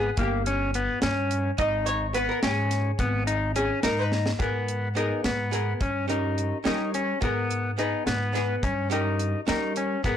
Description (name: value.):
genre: progressive instrumental, band music in an uneven meter.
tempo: 213 BPM (eighths).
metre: 5/8.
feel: straight.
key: G# harmonic minor.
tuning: A4 = 438 Hz.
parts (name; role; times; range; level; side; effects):
archtop guitar, miked and amplified; accompaniment; 0.0-10.2 s; B3 to D#5; -30 LUFS; right 1 dB; double-tracked left and right.
semi-hollow electric guitar; arpeggios; 0.0-10.2 s; Bb3 to D#4; -28 LUFS; left 3 dB; slapback echo.
upright bass; bass; 0.0-10.2 s; G1 to G3; -29 LUFS; equal; none.
deep reggae drum kit; drums; 0.2-10.2 s; hi-hat, kick drum, snare drum; -29 LUFS; right 1 dB; none.
room: light reverb.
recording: blown-out, overdriven recording, overdrive.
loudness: -24 LUFS.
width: side -9 dB against mid.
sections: 0.0-4.4 A section; 4.4-10.2 B section.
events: hollow-body jazz guitar solo 0.0-4.4; drum fill 4.1.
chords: 0.2 Gdim; 1.6 G#m; 4.4 G#madd9; 5.8 D#7/G; 7.2 G#madd9; 8.6 D#7/G.